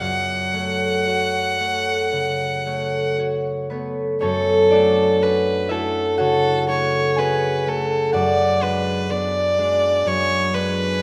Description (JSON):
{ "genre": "classical, romantic duo for violin and harp", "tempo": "56-63 BPM", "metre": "4/4", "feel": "rubato", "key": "F# minor", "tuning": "A4 = 441 Hz", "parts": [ { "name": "rich violin", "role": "melody", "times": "0.0-11.0 s", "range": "A4 to F#5", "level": "-24 LUFS", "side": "equal", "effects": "none" }, { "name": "concert harp", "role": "accompaniment", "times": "0.0-11.0 s", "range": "F#2 to G#5", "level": "-22 LUFS", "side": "equal", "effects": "none" } ], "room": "wet scoring stage reverb, RT60 1.8 s", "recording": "none", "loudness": "-20 LUFS", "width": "mono", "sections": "0.0-4.2 A section; 4.2-11.0 A section", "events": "none", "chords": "0.0 F#m; 8.1 G#m7b5/F#" }